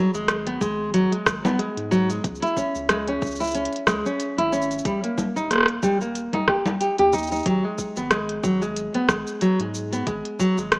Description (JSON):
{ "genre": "folktronica", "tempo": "92 BPM", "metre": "4/4", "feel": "swing 56% on 16ths", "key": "G# minor", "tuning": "A4 = 445 Hz", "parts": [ { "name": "nylon-string guitar", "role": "arpeggios", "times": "0.0-10.8 s", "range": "F#3 to G4", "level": "-22 LUFS", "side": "equal", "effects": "tape echo" }, { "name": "warm sub bass", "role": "bass", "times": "0.1-10.8 s", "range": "D#1 to G#2", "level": "-35 LUFS", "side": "equal", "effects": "none" }, { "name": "organic electronic drum kit", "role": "drums", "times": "0.1-10.8 s", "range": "congas, hi-hat, rim click, shaker", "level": "-24 LUFS", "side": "equal", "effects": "none" }, { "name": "electronic kick drum", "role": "drums", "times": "0.6-10.5 s", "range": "none", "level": "-30 LUFS", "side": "equal", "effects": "none" } ], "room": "moderate echo chamber reverb, RT60 1.7 s, digital ambience", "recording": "small speaker sound", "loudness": "-20 LUFS", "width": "side -26 dB against mid", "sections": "0.0-10.8 A section", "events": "none", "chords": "0.0 G#7(no3); 2.2 C#m; 4.9 D#; 7.5 G#7(no3)" }